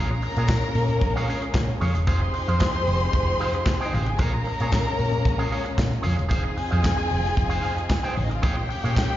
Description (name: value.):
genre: disco.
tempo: 113 BPM.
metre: 4/4.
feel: straight.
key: Bb dorian.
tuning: A4 = 440 Hz.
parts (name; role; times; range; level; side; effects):
warm studio violin section; second line; 0.0-9.2 s; C4 to C6; -28 LUFS; left 1 dB; slapback echo.
electric guitar with an envelope filter; accompaniment; 0.0-9.1 s; Eb4 to G5; -32 LUFS; right 3 dB; slapback echo.
clear symphonic string section; sustained chords; 0.0-9.2 s; F3 to Ab4; -32 LUFS; left 2 dB; none.
hollow-body short-scale fingered electric bass; bass; 0.0-9.0 s; E1 to Bb2; -24 LUFS; equal; none.
modern studio drum kit; drums; 0.2-9.1 s; handclaps, hi-hat, kick drum, snare drum; -26 LUFS; equal; none.
congas; percussion; 0.5-9.1 s; none; -36 LUFS; left 3 dB; none.
tambourine; percussion; 0.5-9.1 s; none; -47 LUFS; left 3 dB; none.
room: small room ambience.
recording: live gig heard through the venue's PA, recital hall reverb, nothing above 7.5 kHz.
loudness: -21 LUFS.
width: side -13 dB against mid.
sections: 0.0-9.2 A section.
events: none.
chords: 0.0 Bbm7; 2.1 Fm7; 4.2 Bbm7; 6.3 Fm7; 8.4 Bbm7.